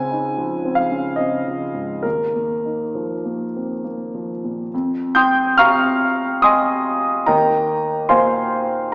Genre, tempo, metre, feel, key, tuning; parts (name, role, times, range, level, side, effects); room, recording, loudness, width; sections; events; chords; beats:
classical, impressionist solo piano; 66-76 BPM; 3/4; rubato; F minor; A4 = 440 Hz
warm grand piano; solo; 0.0-8.9 s; Db2 to G6; -16 LUFS; equal
wet scoring stage reverb, RT60 1.8 s; heard from further back in the room, small speaker sound; -16 LUFS; side -28 dB against mid
0.0-4.7 A section; 4.7-8.9 B section
0.0 Dbmaj9; 2.0 Ebsus2; 4.7 Fm9; 7.3 Ebadd9
0.38 1.18 | 2.05 2.95 3.84 | 4.72 5.60 6.45 | 7.29 8.12